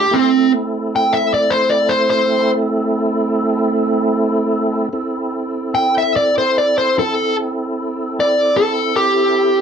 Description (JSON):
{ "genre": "blues", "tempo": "50 BPM (dotted quarters)", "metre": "12/8", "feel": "straight", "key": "A minor", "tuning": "A4 = 440 Hz", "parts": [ { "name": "dark smooth lead guitar", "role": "melody", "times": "0.0-9.6 s", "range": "C4 to G5", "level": "-14 LUFS", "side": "equal", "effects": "overdrive" }, { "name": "tonewheel organ", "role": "sustained chords", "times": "0.0-9.6 s", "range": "A3 to A4", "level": "-19 LUFS", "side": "right 2 dB", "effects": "slow rotary speaker, overdrive, chorus vibrato" } ], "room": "moderate small room reverb, RT60 0.5 s", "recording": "dark, warm production", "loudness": "-14 LUFS", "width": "side -7 dB against mid", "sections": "0.0-9.6 A section", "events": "none", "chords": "0.1 Am" }